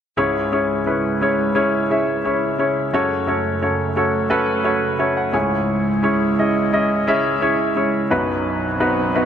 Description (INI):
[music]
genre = pop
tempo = 87 BPM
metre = 4/4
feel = straight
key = C# minor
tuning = A4 = 439 Hz
[part]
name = warm grand piano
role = accompaniment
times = 0.2-9.3 s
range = B1 to G#5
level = -17 LUFS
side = left 1 dB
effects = none
[part]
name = airy breathy pad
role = sustained chords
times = 0.2-9.3 s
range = F#2 to E4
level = -26 LUFS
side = right 4 dB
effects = chorus
[part]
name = swell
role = sound effects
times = 8.8-9.3 s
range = none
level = -26 LUFS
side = right 7 dB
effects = none
[sound]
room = moderate plate reverb, RT60 2.5 s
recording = none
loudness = -17 LUFS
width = side -8 dB against mid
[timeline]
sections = 0.2-9.3 A section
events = grand piano fill 4.7-5.7; swell 8.8-9.3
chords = 0.2 C#m; 2.9 F#m; 5.3 C#m; 8.1 B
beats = | 0.17 0.86 1.55 2.24 | 2.93 3.62 4.31 5.00 | 5.69 6.38 7.07 7.76 | 8.45 9.14